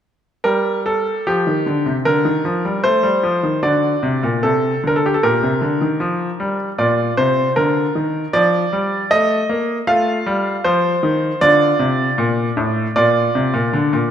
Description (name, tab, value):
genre	classical, baroque-style suite movement for grand piano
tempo	77 BPM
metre	4/4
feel	rubato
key	G minor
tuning	A4 = 440 Hz
part	bright grand piano	solo	0.4-14.1 s	A2 to F5	-15 LUFS	equal	none
room	moderate scoring stage reverb, RT60 1.9 s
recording	none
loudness	-15 LUFS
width	side -9 dB against mid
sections	0.4-14.1 A section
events	none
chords	0.4 Gm; 3.6 D7; 5.2 Gm/Bb; 6.8 Bb; 9.9 F7; 11.4 Bb